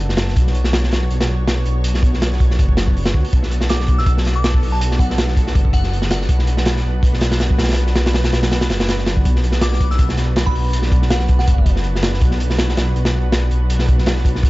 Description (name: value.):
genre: drum and bass, jungle.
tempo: 162 BPM.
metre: 4/4.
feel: swing 54% on 16ths.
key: B minor.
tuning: A4 = 440 Hz.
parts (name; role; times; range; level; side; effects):
lush unison pad; sustained chords; 0.0-14.5 s; B3 to C#5; -28 LUFS; equal; chorus.
dark detuned saw bass; bass; 0.0-14.5 s; F#1 to D2; -18 LUFS; equal; tube saturation.
crunchy breakbeat drum kit; drums; 0.0-14.5 s; hi-hat, kick drum, snare drum; -17 LUFS; equal; none.
glassy synth bell; melody; 3.7-6.6, 9.6-11.7 s; F#5 to E6; -29 LUFS; equal; chorus, phaser, vintage 12-bit sampler grit, dub echo.
room: little or no reverb.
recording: dark, warm production, nothing above 7.7 kHz.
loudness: -14 LUFS.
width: side -19 dB against mid.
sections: 0.0-14.5 A section.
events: none.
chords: 0.0 Bm7.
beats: | 0.36 0.73 1.10 1.48 | 1.85 2.22 2.59 2.96 | 3.33 3.70 4.07 4.44 | 4.81 5.18 5.55 5.92 | 6.29 6.66 7.03 7.40 | 7.77 8.14 8.51 8.88 | 9.25 9.62 9.99 10.36 | 10.73 11.11 11.48 11.85 | 12.22 12.59 12.96 13.33 | 13.70 14.07 14.44.